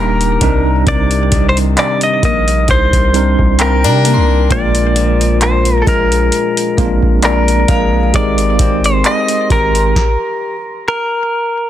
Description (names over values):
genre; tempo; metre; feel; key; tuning
contemporary R&B; 66 BPM; 4/4; swing 54% on 16ths; unclear; A4 = 442 Hz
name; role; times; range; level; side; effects
direct-recorded clean electric guitar; melody; 0.0-11.7 s; A4 to Eb5; -16 LUFS; equal; ping-pong delay
bell-like tine electric piano; accompaniment; 0.0-10.0 s; G3 to Bb4; -18 LUFS; right 2 dB; fast stereo tremolo
fingerpicked acoustic archtop guitar; arpeggios; 0.0-10.6 s; Bb2 to G4; -20 LUFS; left 10 dB; ping-pong delay
long sustained 808-style bass; bass; 0.0-9.9 s; Eb1 to C3; -15 LUFS; equal; none
booming analog drum machine; drums; 0.2-10.2 s; handclaps, hi-hat, kick drum, snare drum; -16 LUFS; equal; none
glassy synth bell; texture; 3.6-10.6 s; F5 to C6; -25 LUFS; right 3 dB; chorus, phaser, ping-pong delay
room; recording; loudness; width
digital ambience; dense, heavily limited modern master; -10 LUFS; side -11 dB against mid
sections
0.0-11.7 A section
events
stop 10.0-11.7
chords
0.4 Cm9; 4.5 Bb7; 8.1 Abmaj9